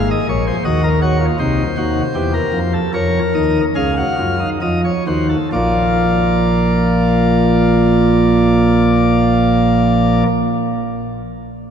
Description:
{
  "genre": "classical, baroque-style 3-part fugue for pipe organ",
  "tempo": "64-83 BPM",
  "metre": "3/4",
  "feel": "straight",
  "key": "unclear",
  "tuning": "A4 = 441 Hz",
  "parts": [
    { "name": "chamber organ, principal chorus", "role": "solo", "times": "0.0-10.3 s", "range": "Ab1 to F5", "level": "-13 LUFS", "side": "equal", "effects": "none" }
  ],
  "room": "wet cathedral reverb, RT60 4.6 s",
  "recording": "dark, warm production",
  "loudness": "-13 LUFS",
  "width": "side -8 dB against mid",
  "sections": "0.0-5.5 A section; 5.5-11.1 B section",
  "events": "slowing down 0.0-5.5",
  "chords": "0.0 Fm/Ab; 0.7 Cm7b5/Eb; 2.2 Edim; 2.9 Bbm; 4.6 F7; 5.5 Bb"
}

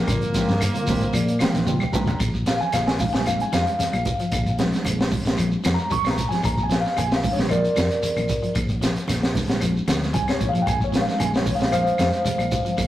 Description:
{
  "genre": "afrobeat",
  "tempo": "113 BPM",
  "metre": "4/4",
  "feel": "straight",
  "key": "Bb mixolydian",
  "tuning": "A4 = 441 Hz",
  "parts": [
    { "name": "breathy trombone", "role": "melody", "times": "0.0-1.7 s", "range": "Bb3", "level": "-29 LUFS", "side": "equal", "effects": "none" },
    { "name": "raspy tenor saxophone", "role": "second line", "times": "0.0-1.7 s", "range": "Bb3", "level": "-31 LUFS", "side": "right 1 dB", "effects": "none" },
    { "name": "electric guitar at the edge of break-up", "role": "arpeggios", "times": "0.0-12.9 s", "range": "C3 to G3", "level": "-30 LUFS", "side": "left 4 dB", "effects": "none" },
    { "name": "mellow electric guitar", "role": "stabs", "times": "0.0-2.2 s", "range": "Ab3 to G4", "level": "-31 LUFS", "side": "right 2 dB", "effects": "none" },
    { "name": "mellow tine electric piano", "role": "accompaniment", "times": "0.1-12.9 s", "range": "D3 to Db6", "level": "-24 LUFS", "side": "equal", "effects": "fast stereo tremolo" },
    { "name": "hollow-body short-scale fingered electric bass", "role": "bass", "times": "0.1-12.9 s", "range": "Bb1 to Bb2", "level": "-26 LUFS", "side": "equal", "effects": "none" },
    { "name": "crunchy breakbeat drum kit", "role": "drums", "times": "0.1-12.9 s", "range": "hi-hat, kick drum, snare drum, toms", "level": "-25 LUFS", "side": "equal", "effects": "none" },
    { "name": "claves", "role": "percussion", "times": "0.1-12.9 s", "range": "none", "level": "-37 LUFS", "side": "left 1 dB", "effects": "none" },
    { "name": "shekere", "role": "percussion", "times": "0.1-12.9 s", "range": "none", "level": "-33 LUFS", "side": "right 2 dB", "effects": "none" },
    { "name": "congas", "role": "percussion", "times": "0.5-12.7 s", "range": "none", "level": "-30 LUFS", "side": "right 2 dB", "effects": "none" }
  ],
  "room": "moderate stone room reverb, RT60 1.0 s",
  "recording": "rough rehearsal-room recording, tube saturation",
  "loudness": "-19 LUFS",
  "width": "side -13 dB against mid",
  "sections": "0.0-2.2 A section; 2.2-12.9 B section",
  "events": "tine electric piano fill 0.6-2.2; drum fill 1.4-2.2; tine electric piano solo 2.2-12.9",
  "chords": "0.0 Bb13"
}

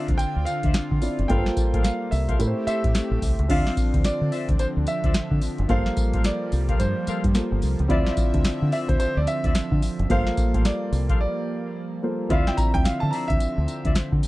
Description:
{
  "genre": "R&B, new jack swing",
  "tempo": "109 BPM",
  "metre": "4/4",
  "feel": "swing 61% on 16ths",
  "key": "D minor",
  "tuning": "A4 = 440 Hz",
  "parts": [
    { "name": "warm concert grand piano", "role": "melody", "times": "0.0-14.1 s", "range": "C5 to Bb5", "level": "-30 LUFS", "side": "right 1 dB", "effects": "none" },
    { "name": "warm concert grand piano", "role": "accompaniment", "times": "0.0-14.3 s", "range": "A3 to D5", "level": "-29 LUFS", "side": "equal", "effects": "none" },
    { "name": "brassy analog pad", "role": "sustained chords", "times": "0.0-14.3 s", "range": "D3 to E5", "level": "-31 LUFS", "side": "right 1 dB", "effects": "chorus" },
    { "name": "mellow horn section", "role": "stabs", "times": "0.0-13.9 s", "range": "F4 to F5", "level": "-33 LUFS", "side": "left 6 dB", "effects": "none" },
    { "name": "deep dub fingered electric bass", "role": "bass", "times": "0.1-14.2 s", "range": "F#1 to D3", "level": "-24 LUFS", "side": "equal", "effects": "none" },
    { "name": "booming analog drum machine", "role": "drums", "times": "0.1-14.3 s", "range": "crash cymbal, hi-hat, kick drum, snare drum, tambourine", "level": "-23 LUFS", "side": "equal", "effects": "vintage 12-bit sampler grit" }
  ],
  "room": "little or no reverb",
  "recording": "dry, close 1970s-style studio recording",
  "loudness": "-20 LUFS",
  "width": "side -18 dB against mid",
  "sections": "0.0-3.5 A section; 3.5-14.3 A section",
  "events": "break 11.2-12.3",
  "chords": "0.0 Dm9; 1.3 Gm11; 2.4 Am7; 3.5 Dm9; 5.7 Gm11; 7.9 Dm9; 10.1 Gm11; 12.3 Dm9"
}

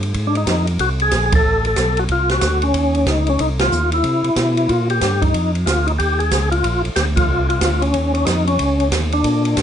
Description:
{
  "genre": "soul jazz organ trio",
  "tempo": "185 BPM",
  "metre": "4/4",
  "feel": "swing 64% on 8ths",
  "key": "unclear",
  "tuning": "A4 = 443 Hz",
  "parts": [
    { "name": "tonewheel organ", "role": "bass", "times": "0.0-9.6 s", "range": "A1 to C3", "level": "-19 LUFS", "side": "equal", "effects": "overdrive" },
    { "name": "open jazz drum kit", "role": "drums", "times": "0.0-9.6 s", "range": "hi-hat, kick drum, ride cymbal, snare drum", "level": "-22 LUFS", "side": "right 2 dB", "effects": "none" },
    { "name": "percussive tonewheel organ", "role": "melody", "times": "0.3-9.6 s", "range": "Db4 to A4", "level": "-18 LUFS", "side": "left 2 dB", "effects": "slow rotary speaker, overdrive, chorus vibrato" }
  ],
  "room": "light reverb",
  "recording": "nothing above 10.6 kHz",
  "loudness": "-15 LUFS",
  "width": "side -9 dB against mid",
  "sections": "0.0-9.6 A section",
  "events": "band accent 1.3, 3.6, 7.1",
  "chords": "0.1 Ab69; 1.4 Am69; 2.7 Ebsus2; 4.0 C7; 5.3 Fm7; 6.6 Bbadd9; 7.9 Ebsus2"
}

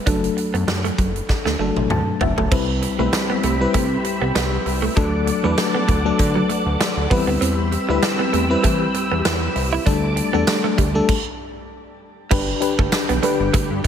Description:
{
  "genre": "1980s-style pop",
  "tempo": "98 BPM",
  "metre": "4/4",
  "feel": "swing 55% on 16ths",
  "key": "unclear",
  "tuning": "A4 = 440 Hz",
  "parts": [
    { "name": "FM electric piano with auto-pan", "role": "accompaniment", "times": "0.0-13.9 s", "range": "F#3 to A5", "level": "-22 LUFS", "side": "left 3 dB", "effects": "shimmer reverb" },
    { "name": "direct-recorded clean electric guitar", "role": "riff", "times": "0.1-13.9 s", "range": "F#3 to E4", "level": "-26 LUFS", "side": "right 7 dB", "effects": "lush chorus, digital delay, shimmer reverb" },
    { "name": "fat analog bass", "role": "bass", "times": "0.1-13.8 s", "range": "F#1 to E3", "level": "-24 LUFS", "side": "equal", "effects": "none" },
    { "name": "big rock drum kit", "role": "drums", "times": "0.1-13.9 s", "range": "crash cymbal, hi-hat, kick drum, snare drum, tambourine, toms", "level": "-22 LUFS", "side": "equal", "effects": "none" },
    { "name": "ensemble organ-string", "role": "sustained chords", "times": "2.5-13.9 s", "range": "D3 to E6", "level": "-25 LUFS", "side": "equal", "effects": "ensemble chorus, shimmer reverb" }
  ],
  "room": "light reverb, studio reverb",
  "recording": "none",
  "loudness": "-17 LUFS",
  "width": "side -8 dB against mid",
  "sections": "0.0-2.5 A section; 2.5-12.3 B section; 12.3-13.9 C section",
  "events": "drum fill 1.3-2.5; FM electric piano fill 1.6-2.5; stop 11.1-12.3",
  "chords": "0.1 D/F#; 2.5 Cmaj7; 5.0 D; 7.1 Cmaj7; 9.9 Dsus4; 12.3 G"
}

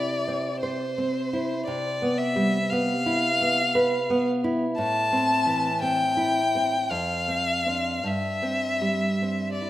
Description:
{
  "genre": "romantic duo for violin and classical guitar",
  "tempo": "50-58 BPM",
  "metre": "3/4",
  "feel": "rubato",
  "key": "C major",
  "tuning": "A4 = 438 Hz",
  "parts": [
    { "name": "rich violin", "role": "melody", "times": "0.0-9.7 s", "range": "C5 to A5", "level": "-25 LUFS", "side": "left 2 dB", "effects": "none" },
    { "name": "nylon-string guitar", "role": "accompaniment", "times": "0.0-9.7 s", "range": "F2 to C5", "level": "-26 LUFS", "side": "right 1 dB", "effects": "none" }
  ],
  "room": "moderate plate reverb, RT60 2.4 s",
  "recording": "rough home demo mix",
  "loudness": "-22 LUFS",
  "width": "side -14 dB against mid",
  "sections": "0.0-9.7 A section",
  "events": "none",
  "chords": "0.0 C; 1.7 G6/C; 4.8 Am; 6.9 Dm7/F; 8.1 C/G"
}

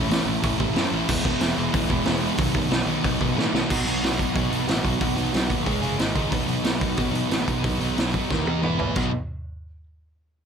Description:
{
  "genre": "punk rock",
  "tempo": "182 BPM",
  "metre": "4/4",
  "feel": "straight",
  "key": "B mixolydian",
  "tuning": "A4 = 441 Hz",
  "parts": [
    { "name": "overdriven semi-hollow guitar", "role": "riff", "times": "0.0-9.1 s", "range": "G#2 to B4", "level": "-26 LUFS", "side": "right 18 dB", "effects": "none" },
    { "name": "sludgy distorted guitar", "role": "riff", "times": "0.0-9.1 s", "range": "G#2 to B4", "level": "-27 LUFS", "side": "left 14 dB", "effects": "overdrive" },
    { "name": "fuzz picked electric bass", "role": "bass", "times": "0.0-9.1 s", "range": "E1 to A2", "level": "-30 LUFS", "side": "equal", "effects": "overdrive" },
    { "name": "raw garage drum kit", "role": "drums", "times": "0.1-9.0 s", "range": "crash cymbal, hi-hat, kick drum, snare drum, toms", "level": "-25 LUFS", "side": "equal", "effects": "none" }
  ],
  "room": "little or no reverb",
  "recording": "none",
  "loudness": "-21 LUFS",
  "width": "side -7 dB against mid",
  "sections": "0.0-3.7 A section; 3.7-9.0 B section; 9.0-10.3 C section",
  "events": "drum fill 3.4-3.7, 8.3-9.0",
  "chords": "0.0 A; 1.1 E; 2.4 B; 5.7 C#5; 6.0 G#5; 6.3 B; 8.3 D#5; 8.6 E5; 9.0 B"
}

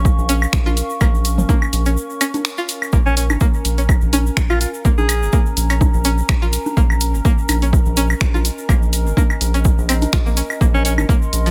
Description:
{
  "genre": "minimal techno",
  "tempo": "125 BPM",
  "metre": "4/4",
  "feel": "swing 55% on 16ths",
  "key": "Bb minor",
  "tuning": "A4 = 440 Hz",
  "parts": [
    { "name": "round analog bass", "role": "bass", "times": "0.0-11.5 s", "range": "Ab1 to Bb1", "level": "-21 LUFS", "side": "equal", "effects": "sidechain pumping" },
    { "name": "warbly tape-like pad", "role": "texture", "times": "0.0-11.5 s", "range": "Db4 to Db6", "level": "-30 LUFS", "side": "equal", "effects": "chorus, built-in reverb, sidechain pumping" },
    { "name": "electronic kick drum", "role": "drums", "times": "0.1-11.2 s", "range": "none", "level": "-18 LUFS", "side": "equal", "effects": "overdrive" },
    { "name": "egg shaker", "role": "percussion", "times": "0.1-11.5 s", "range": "none", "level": "-32 LUFS", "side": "equal", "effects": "none" },
    { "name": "string-like resonator pluck", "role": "riff", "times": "0.3-11.5 s", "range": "F3 to F4", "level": "-26 LUFS", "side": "equal", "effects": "chorus, sidechain pumping, digital delay" },
    { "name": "punchy analog drum machine", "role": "drums", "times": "0.3-11.5 s", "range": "finger snaps, hi-hat", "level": "-25 LUFS", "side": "equal", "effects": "overdrive" },
    { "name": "claves, bongos and congas", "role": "percussion", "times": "0.4-11.1 s", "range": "none", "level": "-25 LUFS", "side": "equal", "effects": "overdrive" },
    { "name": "clear alto saxophone", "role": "melody", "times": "3.1-5.5, 10.7-10.9 s", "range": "Db4 to Ab4", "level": "-25 LUFS", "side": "equal", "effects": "dub echo" }
  ],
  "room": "little or no reverb",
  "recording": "none",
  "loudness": "-17 LUFS",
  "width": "mono",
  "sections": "0.0-11.5 A section",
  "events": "break 2.0-2.9",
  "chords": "0.0 Bbm"
}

